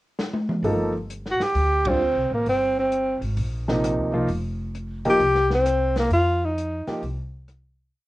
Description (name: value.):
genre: modal jazz.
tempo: 132 BPM.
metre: 4/4.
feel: swing 67% on 8ths.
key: G minor.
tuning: A4 = 439 Hz.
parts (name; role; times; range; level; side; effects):
open jazz drum kit; drums; 0.2-7.6 s; hi-hat, kick drum, ride cymbal, rim click, snare drum, toms; -31 LUFS; equal; cassette tape.
warm concert grand piano; accompaniment; 0.6-7.0 s; C3 to A4; -24 LUFS; equal; cassette tape.
upright bass; bass; 0.6-7.9 s; F1 to F2; -27 LUFS; equal; none.
breathy tenor saxophone; melody; 1.3-6.9 s; Bb3 to G4; -20 LUFS; equal; cassette tape.
room: moderate studio ambience, RT60 0.5 s.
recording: home recording on cassette.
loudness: -20 LUFS.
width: side -18 dB against mid.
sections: 0.0-0.6 pickup bar; 0.6-7.9 A section.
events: drum fill 0.2-0.6; band accent 1.8; fade-out 6.1-7.9.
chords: 0.0 N.C.; 0.6 Gm11; 4.3 F5.